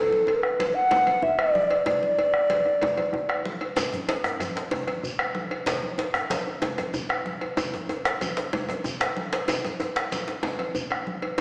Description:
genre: west african traditional, West African drum ensemble.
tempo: 126 BPM (dotted quarters).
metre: 12/8.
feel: straight.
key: D major pentatonic.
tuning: A4 = 440 Hz.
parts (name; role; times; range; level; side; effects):
alto ocarina; melody; 0.0-3.4 s; A4 to F#5; -24 LUFS; equal; none.
congas; percussion; 0.1-11.4 s; none; -38 LUFS; equal; none.
cowbell; percussion; 0.3-11.4 s; none; -34 LUFS; equal; none.
djembe; percussion; 0.3-11.4 s; none; -36 LUFS; equal; none.
bombo; percussion; 0.4-11.4 s; none; -34 LUFS; equal; none.
djembe; percussion; 3.8-10.4 s; none; -35 LUFS; equal; none.
shekere; percussion; 3.8-10.9 s; none; -42 LUFS; equal; none.
room: wet concert hall reverb, RT60 1.7 s.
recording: heard from further back in the room, small speaker sound.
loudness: -26 LUFS.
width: mono.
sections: 0.0-3.8 A section; 3.8-11.4 B section.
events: none.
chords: none.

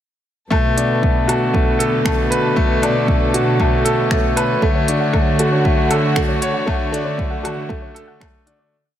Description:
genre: piano and strings electronica.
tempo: 117 BPM.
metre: 4/4.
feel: straight.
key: B minor.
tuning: A4 = 440 Hz.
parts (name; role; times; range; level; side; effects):
dark studio string section; sustained chords; 0.5-8.7 s; D3 to C#5; -24 LUFS; equal; none.
bright grand piano; riff; 0.5-8.7 s; A3 to C#5; -19 LUFS; left 1 dB; ping-pong delay.
warm studio cello section; bass; 0.5-8.7 s; B2 to D3; -22 LUFS; equal; sidechain pumping.
deep house drum kit; drums; 0.5-8.6 s; finger snaps, hi-hat, woodblock; -25 LUFS; left 1 dB; none.
electronic kick drum; drums; 0.5-8.3 s; none; -20 LUFS; equal; none.
soft round pluck; arpeggios; 4.6-8.6 s; A4 to A5; -27 LUFS; right 1 dB; chorus, sidechain pumping, ping-pong delay.
room: light reverb.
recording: none.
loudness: -15 LUFS.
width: side -10 dB against mid.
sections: 0.5-8.7 drop.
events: drop 0.5-8.7; fade-out 6.0-8.7.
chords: 0.5 Bm7; 4.6 Dmaj7.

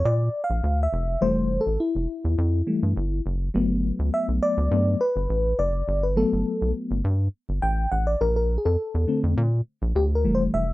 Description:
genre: early-eighties boogie funk.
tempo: 103 BPM.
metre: 4/4.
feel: straight.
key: G major.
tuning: A4 = 440 Hz.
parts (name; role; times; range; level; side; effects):
FM electric piano with auto-pan; accompaniment; 0.0-10.7 s; D3 to G5; -24 LUFS; left 1 dB; none.
rubbery square bass; bass; 0.0-10.7 s; F1 to Bb2; -23 LUFS; equal; none.
room: little or no reverb.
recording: dry, close 1970s-style studio recording.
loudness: -21 LUFS.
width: side -18 dB against mid.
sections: 0.0-10.7 A section.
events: FM electric piano solo 0.0-10.7.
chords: 0.0 Bb; 0.9 Fmaj9; 3.5 Gmaj9; 8.2 Bbmaj9.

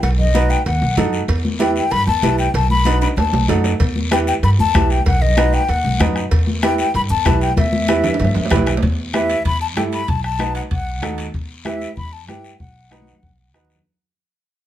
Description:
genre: latin, cumbia.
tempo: 191 BPM.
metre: 4/4.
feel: straight.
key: E harmonic minor.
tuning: A4 = 439 Hz.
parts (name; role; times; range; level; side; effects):
breathy mellow silver concert flute; melody; 0.0-13.5 s; D#5 to B5; -20 LUFS; left 4 dB; none.
upright bass; bass; 0.0-13.8 s; B1 to G2; -19 LUFS; equal; none.
congas; percussion; 0.0-13.8 s; none; -25 LUFS; left 3 dB; none.
cowbell and timbales; percussion; 0.0-11.3 s; none; -27 LUFS; right 4 dB; none.
guiro; percussion; 0.0-13.9 s; none; -30 LUFS; left 5 dB; none.
warm upright piano; accompaniment; 0.3-13.8 s; D#4 to B4; -22 LUFS; right 4 dB; none.
bombo; percussion; 3.8-13.7 s; none; -20 LUFS; left 1 dB; none.
room: light reverb.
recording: none.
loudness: -15 LUFS.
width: side -12 dB against mid.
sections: 0.0-8.8 A section; 8.8-13.9 B section.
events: drum fill 2.9-3.8, 7.6-8.8, 12.9-13.9; fade-out 8.8-13.9.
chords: 0.0 B7; 1.3 Em; 2.5 B7; 3.8 Em; 5.1 B; 6.3 Em; 10.1 B7; 11.3 Em; 12.6 B.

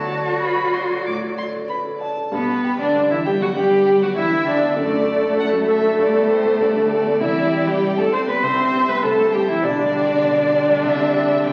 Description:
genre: quick classical-period movement for piano quintet.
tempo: 98 BPM.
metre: 4/4.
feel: straight.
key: G major.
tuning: A4 = 440 Hz.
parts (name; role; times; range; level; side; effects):
rich violin; melody; 0.0-11.5 s; C5 to D6; -29 LUFS; equal; none.
clear violin; second line; 0.0-11.5 s; A4 to C6; -33 LUFS; equal; none.
rich cello; second line; 0.0-11.5 s; A2 to F#4; -29 LUFS; equal; none.
dark baby grand piano; accompaniment; 0.0-11.5 s; B1 to D5; -29 LUFS; equal; none.
rich viola; accompaniment; 0.0-11.5 s; F#3 to C5; -20 LUFS; equal; none.
room: wet recital hall reverb, RT60 1.3 s.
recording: very old 78 rpm record, vinyl crackle.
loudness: -19 LUFS.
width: mono.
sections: 0.0-2.3 A section; 2.3-11.5 B section.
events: none.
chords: 0.0 D; 2.3 G; 4.8 D/F#; 6.0 G; 7.2 C; 9.6 G/B; 10.8 C.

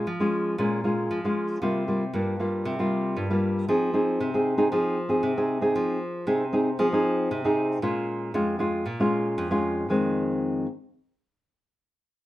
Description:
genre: samba.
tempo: 116 BPM.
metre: 4/4.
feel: straight.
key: F minor.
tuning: A4 = 441 Hz.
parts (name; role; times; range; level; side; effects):
nylon-string guitar; solo; 0.0-10.7 s; F2 to Ab4; -23 LUFS; equal; none.
room: moderate studio reverb, RT60 0.7 s.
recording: none.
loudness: -23 LUFS.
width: side -15 dB against mid.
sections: 0.0-5.8 A section; 5.8-9.9 B section; 9.9-12.0 C section.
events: none.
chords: 0.0 Bbm7; 1.6 C7sus4; 3.7 Fm7; 7.8 Bbm7; 9.9 Fm7.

